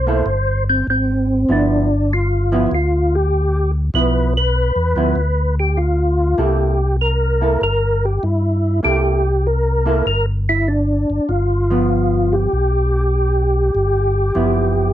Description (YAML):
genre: jazz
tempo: 98 BPM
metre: 4/4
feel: swing 68% on 8ths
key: G mixolydian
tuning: A4 = 440 Hz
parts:
  - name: percussive tonewheel organ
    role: melody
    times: 0.0-14.9 s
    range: C4 to C5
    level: -18 LUFS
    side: equal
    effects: slow rotary speaker, chorus vibrato
  - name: mellow tonewheel organ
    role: bass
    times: 0.0-14.9 s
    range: F#1 to G2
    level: -18 LUFS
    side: equal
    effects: slow rotary speaker
  - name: vintage hollow-body jazz guitar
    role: accompaniment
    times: 0.1-14.9 s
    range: F3 to A4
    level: -20 LUFS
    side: right 4 dB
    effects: none
room: light reverb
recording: dry, close 1970s-style studio recording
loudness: -15 LUFS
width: side -12 dB against mid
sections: 0.0-14.9 A section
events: none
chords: 0.0 C5; 1.5 G6; 6.4 C13; 11.3 G6